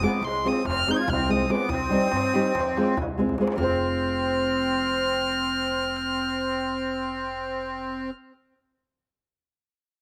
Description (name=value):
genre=balkan folk, Balkan wedding band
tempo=285 BPM (eighths)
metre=9/8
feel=straight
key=F minor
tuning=A4 = 440 Hz
part: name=rich violin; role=melody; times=0.0-8.1 s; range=C6 to Ab6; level=-32 LUFS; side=equal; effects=none
part: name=musette accordion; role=second line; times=0.0-8.1 s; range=Ab3 to F4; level=-30 LUFS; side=equal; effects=slapback echo
part: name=nylon-string guitar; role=accompaniment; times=0.0-8.1 s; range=G3 to C5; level=-29 LUFS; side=equal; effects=none
part: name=upright bass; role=bass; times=0.0-8.1 s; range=F1 to G2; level=-37 LUFS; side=equal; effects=none
part: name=darbuka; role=percussion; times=0.0-3.8 s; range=none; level=-35 LUFS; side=equal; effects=slapback echo
room=little or no reverb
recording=recorded outdoors, with no room sound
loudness=-25 LUFS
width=mono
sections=0.0-3.6 A section; 3.6-7.4 B section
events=drum fill 3.2-3.6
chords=0.0 Fm; 1.7 Cm; 2.5 Fm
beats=0.00 0.21 0.42 0.63 0.84 1.05 1.26 1.47 | 1.68 1.89 2.10 2.31 2.52 2.74 2.95 3.16 3.37 | 3.58 3.79 4.00 4.21 4.42 4.63 4.84 5.05 5.26 | 5.47 5.68 5.89 6.10 6.31 6.53 6.74 6.95 7.16